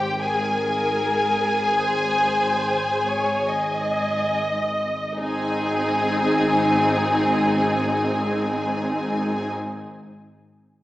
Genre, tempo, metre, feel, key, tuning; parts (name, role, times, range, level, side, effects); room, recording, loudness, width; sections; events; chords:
classical, slow romantic movement for string orchestra; free time; Ab major; A4 = 440 Hz
rich studio violin section; melody; 0.0-9.5 s; G5 to Ab5; -24 LUFS; left 1 dB
rich studio violin section; second line; 0.0-9.5 s; G4 to Ab4; -26 LUFS; equal
rich studio viola section; accompaniment; 0.0-9.5 s; C4 to Eb5; -25 LUFS; equal
clear studio double bass section; bass; 0.0-9.5 s; Ab1; -32 LUFS; right 1 dB
rich studio cello section; bass; 0.0-9.5 s; Ab2; -30 LUFS; equal
wet scoring stage reverb, RT60 1.6 s; heard from further back in the room, small speaker sound; -20 LUFS; side -15 dB against mid
0.0-5.2 A section; 5.2-10.8 B section
slowing down 0.0-5.2
0.0 Ab